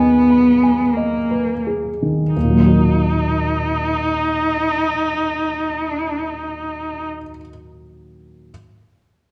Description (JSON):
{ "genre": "classical, romantic duo for cello and grand piano", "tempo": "45 BPM", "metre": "3/4", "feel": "rubato", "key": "Eb minor", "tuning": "A4 = 438 Hz", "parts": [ { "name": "warm cello", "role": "melody", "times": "0.0-7.0 s", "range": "Bb3 to Eb4", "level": "-20 LUFS", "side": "equal", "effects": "none" }, { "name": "warm grand piano", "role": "accompaniment", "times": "0.0-8.5 s", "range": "Eb2 to Cb6", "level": "-21 LUFS", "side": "equal", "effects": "none" } ], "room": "wet recital hall reverb, RT60 1.4 s", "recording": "dark, warm production", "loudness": "-18 LUFS", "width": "mono", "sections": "0.0-2.3 A section; 2.3-6.3 B section", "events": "slowing down 0.0-2.3", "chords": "0.0 Abm/Eb; 2.3 Ebm", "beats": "0.94 | 2.35 3.65 4.96" }